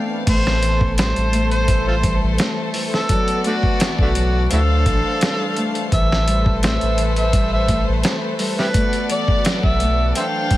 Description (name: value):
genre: trip hop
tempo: 85 BPM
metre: 4/4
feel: straight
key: A minor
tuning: A4 = 440 Hz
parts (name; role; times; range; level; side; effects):
- overdriven harmonica; melody; 0.0-10.6 s; A3 to G5; -22 LUFS; right 1 dB; vintage 12-bit sampler grit, tape echo
- warm chamber violin section; sustained chords; 0.0-10.6 s; A3 to F5; -25 LUFS; left 1 dB; none
- Celtic harp; arpeggios; 0.0-10.6 s; E3 to C4; -25 LUFS; left 2 dB; ping-pong delay
- warm sub bass; bass; 0.3-10.1 s; A1 to D2; -19 LUFS; equal; none
- dusty soul sampler-style drum kit; drums; 0.3-10.6 s; crash cymbal, hi-hat, kick drum, snare drum; -20 LUFS; equal; studio ambience
room: small room ambience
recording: vinyl crackle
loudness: -16 LUFS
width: side -15 dB against mid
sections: 0.3-10.6 A section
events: none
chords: 0.3 Am; 3.1 Bm7; 4.5 Dm7; 5.9 Amadd9; 8.7 Bm7